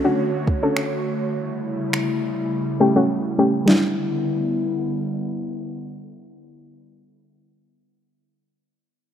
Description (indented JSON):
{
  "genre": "dance-pop",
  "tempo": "103 BPM",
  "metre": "4/4",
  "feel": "straight",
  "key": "E dorian",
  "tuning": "A4 = 440 Hz",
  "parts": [
    { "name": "soft round pluck", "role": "accompaniment", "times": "0.0-6.8 s", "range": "G3 to A4", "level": "-19 LUFS", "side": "left 1 dB", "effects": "chorus, sidechain pumping, low-pass filter" },
    { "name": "airy breathy pad", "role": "sustained chords", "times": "0.0-6.8 s", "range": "C#3 to C#5", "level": "-24 LUFS", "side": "equal", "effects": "chorus, sidechain pumping, low-pass filter" },
    { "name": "smooth R&B drum kit", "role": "drums", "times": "0.5-3.8 s", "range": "finger snaps, kick drum, snare drum", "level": "-25 LUFS", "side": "equal", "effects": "overdrive" }
  ],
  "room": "moderate plate reverb, RT60 2.7 s",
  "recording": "rough home demo mix",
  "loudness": "-19 LUFS",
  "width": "side -9 dB against mid",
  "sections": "0.0-3.7 A section; 3.7-6.0 B section",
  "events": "filter sweep 0.0-3.7; silent gap 2.5-3.7",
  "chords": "0.0 Dmaj7; 1.3 A7; 3.7 Em7"
}